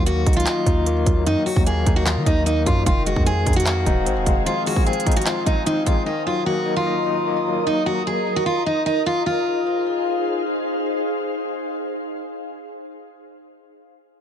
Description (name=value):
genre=hip hop, trap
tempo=150 BPM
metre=4/4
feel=half-time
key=F phrygian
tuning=A4 = 440 Hz
part: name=picked steel-string acoustic guitar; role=melody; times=0.0-10.4 s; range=Eb4 to Ab4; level=-22 LUFS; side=equal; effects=low-pass filter, digital delay
part: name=overdriven tine electric piano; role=accompaniment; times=0.0-8.5 s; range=Eb3 to F5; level=-25 LUFS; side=left 5 dB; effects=medium tremolo, low-pass filter
part: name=warm 808-style bass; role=bass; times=0.0-4.5 s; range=Eb1 to Eb3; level=-22 LUFS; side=right 1 dB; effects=none
part: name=trap drum kit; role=drums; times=0.1-6.0 s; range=handclaps, hi-hat, kick drum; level=-20 LUFS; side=right 1 dB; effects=none
part: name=glassy FM pad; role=sustained chords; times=3.2-13.1 s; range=Eb4 to Eb6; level=-26 LUFS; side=left 1 dB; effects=ensemble chorus, built-in reverb
room=light reverb, digital ambience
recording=none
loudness=-18 LUFS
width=side -8 dB against mid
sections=0.0-9.3 A section; 9.3-12.5 B section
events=none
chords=0.0 Ebm; 2.9 Fm7; 6.1 Ebm; 9.3 Fm7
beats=0.06 0.46 0.86 | 1.26 1.66 2.06 2.46 | 2.86 3.26 3.66 4.06 | 4.46 4.86 5.26 5.66 | 6.06 6.46 6.86 7.26 | 7.66 8.06 8.46 8.86 | 9.26 9.66 10.06 10.46 | 10.86 11.26 11.66 12.06